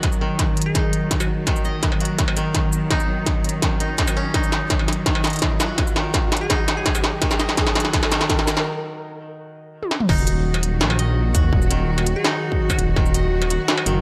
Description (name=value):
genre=half-time drum and bass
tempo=167 BPM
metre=4/4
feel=half-time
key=Eb minor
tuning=A4 = 440 Hz
part: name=clear symphonic cello section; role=sustained chords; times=0.0-14.0 s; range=Eb3 to Gb4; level=-29 LUFS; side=equal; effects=sidechain pumping
part: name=koto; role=arpeggios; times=0.0-14.0 s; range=Eb3 to Eb5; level=-30 LUFS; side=equal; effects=low-pass filter, dub echo
part: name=electronic kick drum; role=drums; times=0.0-13.0 s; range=none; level=-24 LUFS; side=equal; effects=distortion, small room ambience
part: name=industrial drum kit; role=drums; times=0.0-13.9 s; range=crash cymbal, hi-hat, shaker, snare drum, struck metal, toms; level=-24 LUFS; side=equal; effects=small room ambience
part: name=riser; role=sound effects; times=1.7-8.7 s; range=none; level=-34 LUFS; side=equal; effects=none
part: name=glassy wavetable pluck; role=melody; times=0.7-1.6, 6.4-6.9, 12.2-13.1 s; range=Gb4 to Ab4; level=-35 LUFS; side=equal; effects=chorus, dub echo
part: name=dark detuned saw bass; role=bass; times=10.1-14.0 s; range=Eb1 to Eb2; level=-23 LUFS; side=equal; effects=tube saturation
room=light reverb, digital ambience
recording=none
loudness=-20 LUFS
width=mono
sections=0.0-10.1 A section; 10.1-14.0 B section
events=build-up 0.0-10.1; drum fill 0.0-8.7, 9.8; break 8.7-10.1; drop 10.1-14.0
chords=0.0 Ebm